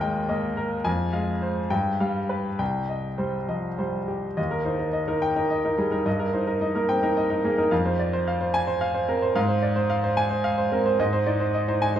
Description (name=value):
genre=classical, virtuoso piano study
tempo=72 BPM (dotted quarters)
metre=6/8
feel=rubato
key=C minor, Eb major from 4.4 s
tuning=A4 = 440 Hz
part: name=clear baby grand piano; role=solo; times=0.0-12.0 s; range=C2 to Bb5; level=-22 LUFS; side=equal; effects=none
room=wet recital hall reverb, RT60 1.4 s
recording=minimal, uncompressed stereo recording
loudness=-22 LUFS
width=side -10 dB against mid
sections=0.0-4.4 A section; 4.4-12.0 B section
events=none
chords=0.0 Eb; 0.9 Fm; 1.7 G7; 2.6 Cm; 4.4 Eb; 6.1 Eb/G; 7.7 Fm; 9.4 Fm/Ab; 11.0 Ab